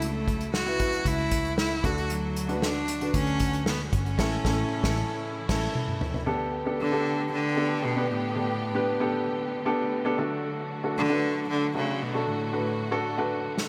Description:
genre	piano-driven pop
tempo	115 BPM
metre	4/4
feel	straight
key	D major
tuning	A4 = 440 Hz
part	rich cello	melody	0.0-13.3 s	A2 to F#4	-32 LUFS	equal	none
part	dark baby grand piano	accompaniment	0.0-13.7 s	A2 to B4	-32 LUFS	equal	none
part	warm studio string section	sustained chords	0.0-13.7 s	C#3 to G4	-40 LUFS	equal	none
part	vintage muted picked electric bass	bass	0.0-5.7 s	G1 to D2	-33 LUFS	equal	none
part	unplugged drum kit	drums	0.0-6.3, 13.6-13.7 s	crash cymbal, hi-hat, kick drum, snare drum, toms	-32 LUFS	equal	gated reverb
room	moderate lush hall reverb, RT60 2.9 s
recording	bright 1980s-style digital production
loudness	-27 LUFS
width	mono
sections	0.0-6.3 A section; 6.3-13.7 B section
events	band accent 4.2-6.3; drum fill 5.2-6.3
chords	0.0 F#m7/C#; 1.8 D; 4.2 A; 6.3 Gadd9; 10.2 D

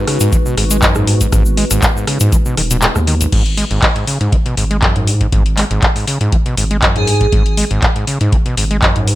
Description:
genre	acid house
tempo	120 BPM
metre	4/4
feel	swing 53% on 16ths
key	G# minor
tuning	A4 = 440 Hz
part	dark analog pad	sustained chords	0.0-3.3 s	G#3 to B4	-24 LUFS	equal	chorus, sidechain pumping
part	overdriven acid bass	riff	0.0-9.1 s	G#1 to G#3	-19 LUFS	equal	distortion, vintage 12-bit sampler grit
part	warbly tape-like pad	texture	0.0-3.4 s	D#4 to F#4	-27 LUFS	left 1 dB	chorus, built-in reverb, sidechain pumping
part	booming analog drum machine	drums	0.1-9.2 s	crash cymbal, handclaps, hi-hat, rim click	-17 LUFS	left 1 dB	small room ambience
part	saturated sub bass	bass	0.2-9.2 s	D#1 to G#2	-16 LUFS	equal	sidechain pumping
part	tube shaker	percussion	0.2-3.3 s	none	-22 LUFS	left 3 dB	none
part	electronic kick drum	drums	0.3-8.9 s	none	-15 LUFS	equal	small room ambience
part	airy dreamy lead	melody	7.0-7.3 s	G#4	-20 LUFS	right 2 dB	chorus, digital delay
room	digital ambience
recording	none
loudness	-11 LUFS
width	side -16 dB against mid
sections	0.0-3.3 A section; 3.3-9.2 B section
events	drop 0.0-3.3; kick drops out 2.8-3.3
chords	0.0 G#m; 3.3 N.C.

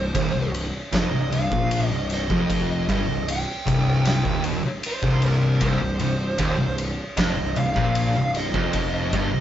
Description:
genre	stoner and doom metal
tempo	77 BPM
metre	4/4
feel	straight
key	C minor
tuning	A4 = 439 Hz
part	fuzz lead guitar	melody	0.0-9.4 s	Bb4 to G5	-28 LUFS	right 1 dB	distortion
part	fuzz guitar	riff	0.0-9.4 s	C2 to Bb2	-26 LUFS	right 4 dB	distortion
part	thick fuzz guitar	riff	0.0-9.4 s	C2 to Bb2	-26 LUFS	left 4 dB	distortion
part	fuzz picked electric bass	bass	0.0-9.4 s	C1 to Bb1	-29 LUFS	equal	overdrive
part	oversized low-tuned drum kit	drums	0.1-9.3 s	kick drum, ride cymbal, snare drum	-27 LUFS	equal	none
part	biting overdriven guitar	riff	5.6-9.4 s	C2 to Bb2	-30 LUFS	right 1 dB	none
room	light reverb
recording	band playing live in one room, nothing above 7.7 kHz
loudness	-20 LUFS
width	side -11 dB against mid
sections	0.0-9.4 A section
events	none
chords	0.0 Cm

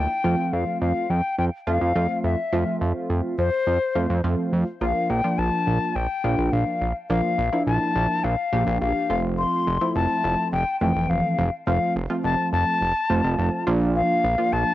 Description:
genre	synth-pop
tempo	105 BPM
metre	4/4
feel	straight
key	F major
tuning	A4 = 439 Hz
part	hollow concert flute	melody	0.0-14.7 s	C5 to C6	-24 LUFS	left 4 dB	cassette tape
part	funky polysynth comp	accompaniment	0.0-14.7 s	E3 to G4	-25 LUFS	right 1 dB	chorus
part	fat analog bass	bass	0.0-14.6 s	F1 to F2	-24 LUFS	right 1 dB	none
room	moderate studio reverb, RT60 0.7 s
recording	home recording on cassette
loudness	-20 LUFS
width	side -14 dB against mid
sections	0.0-4.8 A section; 4.8-14.7 B section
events	none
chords	0.2 F; 4.8 Bbmaj7; 9.1 F; 13.7 Bb

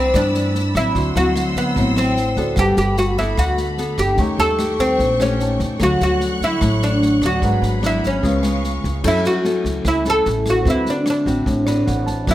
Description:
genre	bossa nova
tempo	148 BPM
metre	4/4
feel	straight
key	D major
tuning	A4 = 437 Hz
part	oud	melody	0.0-12.3 s	B3 to A4	-19 LUFS	equal	none
part	nylon-string guitar	accompaniment	0.0-12.3 s	G2 to B4	-22 LUFS	left 2 dB	none
part	warm grand piano	accompaniment	0.0-12.3 s	C4 to Db6	-30 LUFS	right 2 dB	none
part	warm symphonic string section	sustained chords	0.0-9.0 s	G#4 to F#6	-29 LUFS	equal	none
part	upright bass	bass	0.0-12.3 s	G1 to G2	-23 LUFS	equal	none
part	swinging big-band drum kit	drums	0.1-12.3 s	crash cymbal, kick drum, rim click, snare drum	-27 LUFS	equal	none
room	light reverb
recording	none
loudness	-16 LUFS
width	side -14 dB against mid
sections	0.0-9.0 A section; 9.0-12.3 B section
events	grand piano fill 11.5-12.3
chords	0.0 Cmaj9; 1.0 D9; 2.6 Gmaj9; 4.2 Eb7#11; 5.8 Dmaj7; 7.4 G#m7b5; 8.2 C#7; 9.0 F#m7; 10.7 D13

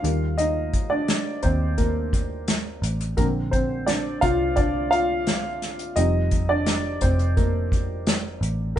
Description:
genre	piano-driven pop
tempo	86 BPM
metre	4/4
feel	straight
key	unclear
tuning	A4 = 439 Hz
part	warm upright piano	accompaniment	0.0-8.8 s	D3 to F5	-24 LUFS	equal	none
part	vintage muted picked electric bass	bass	0.0-8.8 s	F1 to Eb2	-26 LUFS	equal	none
part	unplugged drum kit	drums	0.0-8.6 s	hi-hat, kick drum, snare drum	-24 LUFS	equal	none
room	light reverb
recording	band playing live in one room, nothing above 10.3 kHz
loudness	-21 LUFS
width	side -11 dB against mid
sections	0.0-8.8 A section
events	upright piano solo 0.0-8.8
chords	0.0 Eb; 3.2 Bbadd9; 6.0 Fsus2

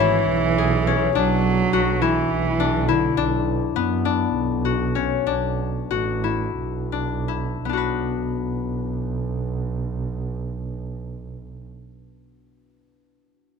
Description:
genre	contemporary instrumental, chamber music in an uneven meter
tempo	160-209 BPM (eighths)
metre	7/8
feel	straight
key	B dorian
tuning	A4 = 439 Hz
part	warm cello	second line	0.0-3.2 s	D3 to F#3	-22 LUFS	right 6 dB	none
part	concert harp	arpeggios	0.0-11.8 s	B3 to B4	-23 LUFS	left 12 dB	none
part	warm double bass	bass	0.0-11.6 s	G#1 to F#2	-26 LUFS	right 4 dB	none
room	light reverb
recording	close, detailed microphones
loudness	-20 LUFS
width	side -5 dB against mid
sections	0.0-7.7 A section; 7.7-12.8 B section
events	slowing down 3.2-7.7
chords	0.0 C#m7; 1.2 E5/B; 3.2 Bm; 5.3 D; 7.7 Bm

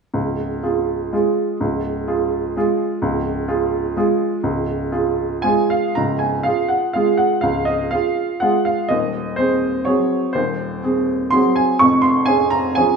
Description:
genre	classical, piano waltz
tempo	111-135 BPM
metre	3/4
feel	rubato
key	Db major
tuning	A4 = 440 Hz
part	clear upright piano	solo	0.1-13.0 s	Db1 to Db6	-16 LUFS	right 2 dB	none
room	wet recital hall reverb, RT60 1.3 s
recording	none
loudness	-16 LUFS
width	side -5 dB against mid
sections	0.1-6.0 A section; 6.0-13.0 B section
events	none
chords	0.1 Db; 8.9 Ab7/Eb; 11.8 Db/F

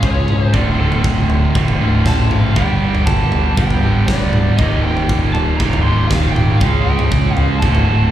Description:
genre	quiet-loud alternative rock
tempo	119 BPM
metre	4/4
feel	straight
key	unclear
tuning	A4 = 439 Hz
part	lead guitar through a small cranked amp	melody	0.0-8.1 s	A4 to C6	-23 LUFS	right 1 dB	overdrive, slapback echo
part	twelve-string electric guitar	arpeggios	0.0-0.5 s	C#3 to G#4	-27 LUFS	right 1 dB	ensemble chorus, slapback echo
part	fuzz guitar	riff	0.0-8.1 s	D2 to G#4	-22 LUFS	left 7 dB	distortion
part	growling picked electric bass	bass	0.0-8.1 s	D1 to C#2	-19 LUFS	equal	overdrive
part	big rock drum kit	drums	0.0-7.9 s	kick drum, snare drum, toms	-16 LUFS	equal	none
part	biting overdriven guitar	riff	0.5-8.1 s	D2 to C#4	-20 LUFS	right 7 dB	slapback echo
room	small room ambience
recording	live gig heard through the venue's PA, club reverb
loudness	-12 LUFS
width	side -12 dB against mid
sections	0.0-8.1 A section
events	lead electric guitar solo 0.0-8.1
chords	0.0 C#; 0.5 Dm; 2.6 G; 4.6 Eb; 6.6 C#

